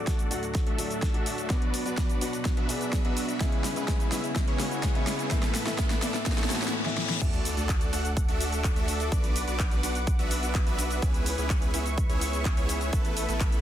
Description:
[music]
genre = EDM, festival progressive house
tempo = 126 BPM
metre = 4/4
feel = straight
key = unclear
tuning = A4 = 439 Hz
[part]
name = dark concert grand piano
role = accompaniment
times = 0.0-7.2 s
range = A2 to A4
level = -34 LUFS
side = left 3 dB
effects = sidechain pumping, ping-pong delay
[part]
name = lush unison pad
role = sustained chords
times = 0.0-13.6 s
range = D2 to D6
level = -38 LUFS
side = right 1 dB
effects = chorus, sidechain pumping
[part]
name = supersaw chords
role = riff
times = 0.0-13.6 s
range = A3 to F#5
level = -33 LUFS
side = right 1 dB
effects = sidechain pumping, low-pass filter, ping-pong delay
[part]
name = riser, reverse cymbal and sub drop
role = sound effects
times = 2.1-9.1 s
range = none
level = -38 LUFS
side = left 2 dB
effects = none
[part]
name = big-room dance drum kit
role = drums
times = 0.1-13.6 s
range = crash cymbal, handclaps, hi-hat, shaker, snare drum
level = -33 LUFS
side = equal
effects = overdrive
[part]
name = electronic kick drum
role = drums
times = 0.1-13.5 s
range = none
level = -27 LUFS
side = equal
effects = overdrive
[part]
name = saturated sub bass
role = bass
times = 7.2-13.6 s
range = A1 to D2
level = -32 LUFS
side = equal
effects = sidechain pumping
[sound]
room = light reverb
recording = dense, heavily limited modern master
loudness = -25 LUFS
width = side -11 dB against mid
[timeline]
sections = 0.0-7.2 A section; 7.2-13.6 B section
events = build-up 0.0-7.2; drum fill 0.0-6.7, 6.9-7.2; reverse cymbal 6.3-7.2; drop 7.2-13.6; impact 7.2-9.1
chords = 0.0 D; 1.5 Bm; 3.4 C#m7; 5.3 Asus2; 7.2 D; 9.1 Bm; 11.0 C#m7; 12.9 Asus2

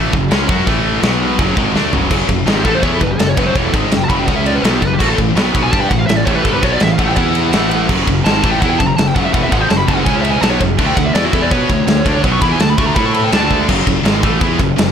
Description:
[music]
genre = heavy metal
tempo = 166 BPM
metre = 4/4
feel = straight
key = F# minor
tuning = A4 = 440 Hz
[part]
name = distorted electric guitar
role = riff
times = 0.0-13.7 s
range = E2 to B4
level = -22 LUFS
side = equal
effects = overdrive
[part]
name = scooped high-gain guitar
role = riff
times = 0.0-14.9 s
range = E2 to B4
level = -19 LUFS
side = left 10 dB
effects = distortion
[part]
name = scooped high-gain guitar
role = riff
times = 0.0-14.9 s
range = E2 to B4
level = -20 LUFS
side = right 11 dB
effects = distortion
[part]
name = fuzz fingered electric bass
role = bass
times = 0.0-14.9 s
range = E1 to B2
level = -19 LUFS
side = equal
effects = overdrive
[part]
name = big rock drum kit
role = drums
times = 0.1-14.9 s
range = crash cymbal, kick drum, ride cymbal, snare drum, toms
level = -16 LUFS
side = equal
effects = none
[part]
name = high-gain lead guitar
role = melody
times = 2.6-13.6 s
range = F#4 to C#6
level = -19 LUFS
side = equal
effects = distortion
[sound]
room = studio reverb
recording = none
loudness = -12 LUFS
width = side -8 dB against mid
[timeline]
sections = 0.0-2.1 A section; 2.1-13.7 B section; 13.7-14.9 C section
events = drum fill 1.8-2.1, 13.5; lead electric guitar solo 2.1-13.7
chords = 0.0 F#m; 0.7 A5; 1.0 B5; 1.4 F#m; 4.3 C#5; 4.6 F#5; 5.0 A5; 7.2 E5; 7.5 A5; 7.9 F#m; 10.1 C#5; 10.4 F#5; 10.8 D5; 13.0 A5; 13.3 D5; 13.7 F#m

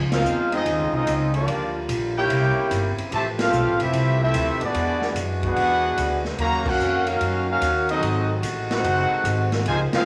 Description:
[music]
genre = jazz, big band swing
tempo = 147 BPM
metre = 4/4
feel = swing 66% on 8ths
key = unclear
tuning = A4 = 438 Hz
[part]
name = clear trombone section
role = sustained chords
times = 0.0-10.1 s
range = C3 to B4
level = -34 LUFS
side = equal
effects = none
[part]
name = upright bass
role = bass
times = 0.0-10.0 s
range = F1 to F#2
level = -28 LUFS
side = equal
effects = none
[part]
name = clear trumpet section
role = melody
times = 0.1-10.1 s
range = Bb3 to Bb5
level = -26 LUFS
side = equal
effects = cassette tape
[part]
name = brilliant trombone section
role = second line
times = 0.1-10.1 s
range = C3 to G4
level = -28 LUFS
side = equal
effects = cassette tape
[part]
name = swinging big-band drum kit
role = drums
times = 0.1-10.0 s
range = crash cymbal, hi-hat, kick drum, ride cymbal, snare drum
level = -33 LUFS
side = equal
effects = cassette tape
[sound]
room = light reverb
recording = home recording on cassette, small room ambience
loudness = -22 LUFS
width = mono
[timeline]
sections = 0.0-10.1 A section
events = band accent 0.0, 3.3, 6.6, 9.9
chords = 0.0 Dbmaj9; 1.5 Gm7; 2.3 C7b9; 3.1 Fmaj9#11; 4.8 E9; 6.4 Ebm9; 8.0 Ab7b9

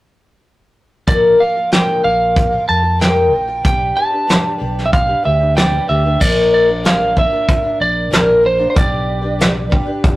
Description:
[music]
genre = folk rock and heartland rock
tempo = 94 BPM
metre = 4/4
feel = straight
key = unclear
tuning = A4 = 441 Hz
[part]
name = lightly driven lead guitar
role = melody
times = 1.1-10.0 s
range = Bb4 to A5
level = -16 LUFS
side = right 2 dB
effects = none
[part]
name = picked twelve-string acoustic guitar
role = accompaniment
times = 1.1-10.2 s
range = Bb2 to B4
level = -17 LUFS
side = left 2 dB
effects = none
[part]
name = fingered electric bass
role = bass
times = 1.1-9.8 s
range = Bb1 to F2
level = -20 LUFS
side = equal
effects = none
[part]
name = soft brush drum kit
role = drums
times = 1.1-10.2 s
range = crash cymbal, hi-hat, kick drum, snare drum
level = -15 LUFS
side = equal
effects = none
[sound]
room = moderate studio reverb, RT60 0.6 s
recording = rough rehearsal-room recording, tube saturation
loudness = -12 LUFS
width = side -17 dB against mid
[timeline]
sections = 1.1-6.2 A section; 6.2-10.2 B section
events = none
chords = 1.1 Bb; 3.6 G/B; 6.2 Bb; 8.8 G/B

